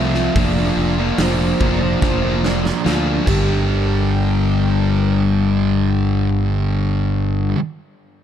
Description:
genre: post-rock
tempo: 72 BPM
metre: 4/4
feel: straight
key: G minor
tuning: A4 = 440 Hz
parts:
  - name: brassy analog pad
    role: sustained chords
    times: 0.0-7.5 s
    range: D4 to Bb5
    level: -32 LUFS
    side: equal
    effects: chorus, phaser
  - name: vibraphone with medium mallets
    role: arpeggios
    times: 0.0-4.1 s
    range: G4 to E5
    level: -27 LUFS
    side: right 8 dB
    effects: digital delay
  - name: sludgy distorted guitar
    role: riff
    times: 0.0-7.6 s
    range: G2 to F4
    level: -20 LUFS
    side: left 10 dB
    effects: overdrive
  - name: thick fuzz guitar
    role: riff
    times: 0.0-7.6 s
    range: G2 to F4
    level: -20 LUFS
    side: right 6 dB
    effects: distortion
  - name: growling fingered electric bass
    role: bass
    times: 0.0-7.5 s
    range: F1 to D2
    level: -21 LUFS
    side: equal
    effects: overdrive
  - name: huge arena drum kit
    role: drums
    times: 0.1-3.5 s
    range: crash cymbal, hi-hat, kick drum, snare drum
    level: -23 LUFS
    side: equal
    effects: none
room: small room reverb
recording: dark, warm production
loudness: -15 LUFS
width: side -9 dB against mid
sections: 0.0-3.7 A section; 3.7-7.0 B section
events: drum fill 2.0-3.7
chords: 0.4 Bb/F; 3.3 Gm

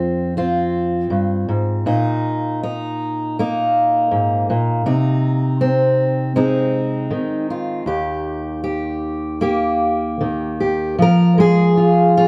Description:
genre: folk, solo fingerstyle acoustic guitar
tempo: 79 BPM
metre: 4/4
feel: rubato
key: Eb major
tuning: A4 = 439 Hz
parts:
  - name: fingerpicked steel-string acoustic guitar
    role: solo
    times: 0.0-12.3 s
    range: Eb2 to Bb4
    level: -18 LUFS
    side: equal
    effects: none
room: moderate studio reverb, RT60 0.7 s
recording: band playing live in one room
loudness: -18 LUFS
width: mono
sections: 0.0-11.0 A section; 11.0-12.3 B section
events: none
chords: 0.0 Fm; 1.9 Bbsus4; 4.9 Ab/C; 7.9 Eb; 11.0 Fm

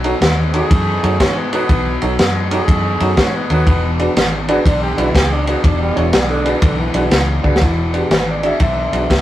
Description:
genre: electric blues shuffle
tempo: 122 BPM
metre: 4/4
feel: swing 66% on 8ths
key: E mixolydian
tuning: A4 = 444 Hz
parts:
  - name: breathy tenor saxophone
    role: second line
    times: 0.0-7.3 s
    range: D3 to D5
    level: -22 LUFS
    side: right 1 dB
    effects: none
  - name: warm upright piano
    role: accompaniment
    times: 0.0-9.0 s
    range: D4 to D5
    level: -19 LUFS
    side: right 2 dB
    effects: none
  - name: overdriven electric guitar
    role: riff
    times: 0.0-9.2 s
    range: E2 to A3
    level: -23 LUFS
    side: left 3 dB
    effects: none
  - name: vintage muted fingered electric bass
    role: bass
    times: 0.0-9.2 s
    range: E1 to G#2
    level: -19 LUFS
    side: equal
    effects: none
  - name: crunchy breakbeat drum kit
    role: drums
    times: 0.0-9.2 s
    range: kick drum, ride cymbal, snare drum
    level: -16 LUFS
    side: equal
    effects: none
  - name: electric slide guitar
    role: melody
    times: 7.6-9.2 s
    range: E4 to E5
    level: -22 LUFS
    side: equal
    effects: none
room: moderate studio reverb, RT60 0.7 s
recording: rough rehearsal-room recording, warm saturation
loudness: -13 LUFS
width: side -13 dB against mid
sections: 0.0-7.6 A section; 7.6-9.2 B section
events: tenor saxophone solo 0.0-7.6; drum fill 7.4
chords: 0.0 B9; 3.7 E9

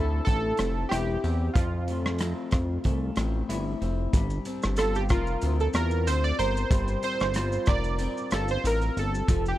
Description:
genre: indie pop, bedroom pop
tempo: 93 BPM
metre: 4/4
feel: swing 55% on 16ths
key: unclear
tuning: A4 = 440 Hz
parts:
  - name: warm analog keys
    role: melody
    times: 0.0-9.6 s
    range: F4 to D5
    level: -30 LUFS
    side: right 3 dB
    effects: analog chorus
  - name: electric guitar through a small old amp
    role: accompaniment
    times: 0.0-9.6 s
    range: D3 to Bb4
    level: -33 LUFS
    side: left 4 dB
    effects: wide subtle chorus, vibrato effect
  - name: chorused synth bass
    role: bass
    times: 0.0-9.5 s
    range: E1 to F2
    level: -28 LUFS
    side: equal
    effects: none
  - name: raw garage drum kit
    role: drums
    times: 0.3-9.6 s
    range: hi-hat, kick drum, rim click, shaker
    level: -28 LUFS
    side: equal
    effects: none
room: little or no reverb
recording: dry, close 1970s-style studio recording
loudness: -24 LUFS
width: side -14 dB against mid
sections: 0.0-4.1 A section; 4.1-9.6 B section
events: synth keys solo 4.1-9.6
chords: 0.0 Dm9; 1.6 Fmaj7; 4.1 Gm11

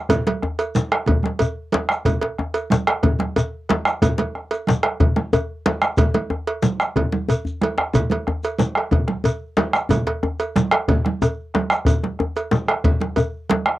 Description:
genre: west african traditional, West African drum ensemble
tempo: 122 BPM (dotted quarters)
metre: 12/8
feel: straight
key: none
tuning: none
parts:
  - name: bombo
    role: percussion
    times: 0.1-13.8 s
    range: none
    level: -21 LUFS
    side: right 1 dB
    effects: none
  - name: congas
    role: percussion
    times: 0.1-13.8 s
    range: none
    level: -24 LUFS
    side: right 3 dB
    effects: none
  - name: cowbell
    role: percussion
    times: 0.1-13.7 s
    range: none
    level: -24 LUFS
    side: right 3 dB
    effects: none
  - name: djembe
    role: percussion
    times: 0.1-13.7 s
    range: none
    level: -23 LUFS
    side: left 2 dB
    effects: none
  - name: shekere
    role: percussion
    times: 0.1-13.3 s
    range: none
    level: -24 LUFS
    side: left 1 dB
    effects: none
room: wet booth ambience, RT60 0.2 s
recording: home recording on cassette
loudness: -18 LUFS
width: side -15 dB against mid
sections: 0.1-13.8 A section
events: drum fill 7.5-7.9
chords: none

